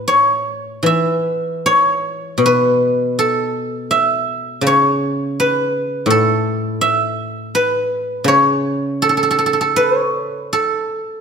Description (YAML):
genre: chinese traditional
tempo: 81 BPM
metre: 4/4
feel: uneven beats, rubato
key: A gong mode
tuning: A4 = 440 Hz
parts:
  - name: guzheng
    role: solo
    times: 0.0-11.2 s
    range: A2 to E5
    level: -14 LUFS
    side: equal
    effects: none
room: light reverb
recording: none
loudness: -14 LUFS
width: side -6 dB against mid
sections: 0.0-11.2 A section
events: none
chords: none